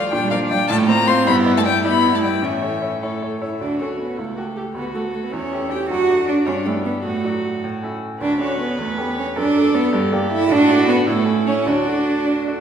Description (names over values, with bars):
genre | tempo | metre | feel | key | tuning
quick classical-period movement for piano quartet | 104 BPM (dotted quarters) | 6/8 | straight | D major | A4 = 439 Hz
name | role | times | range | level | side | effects
warm violin | melody | 0.0-12.6 s | G4 to C6 | -25 LUFS | left 6 dB | none
warm cello | second line | 0.0-12.6 s | E3 to G4 | -20 LUFS | right 2 dB | none
bright baby grand piano | accompaniment | 0.0-12.6 s | C#2 to D5 | -24 LUFS | left 1 dB | none
rich viola | accompaniment | 0.0-12.6 s | C#4 to B4 | -25 LUFS | right 2 dB | none
room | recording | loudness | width
wet recital hall reverb, RT60 1.5 s | heard from further back in the room | -17 LUFS | side -8 dB against mid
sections
0.0-3.6 A section; 3.6-12.6 B section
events
none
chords
0.1 Bb; 0.7 F/A; 1.3 Em7/G; 2.4 A; 3.6 D; 4.2 A7/C#; 4.8 D; 5.3 A7/E; 5.9 D/F#; 6.5 Em/G; 7.0 D/A; 7.6 A; 8.2 D; 8.8 A7/E; 9.4 D/F#; 9.9 Gm; 10.5 D/A; 11.1 A; 11.7 D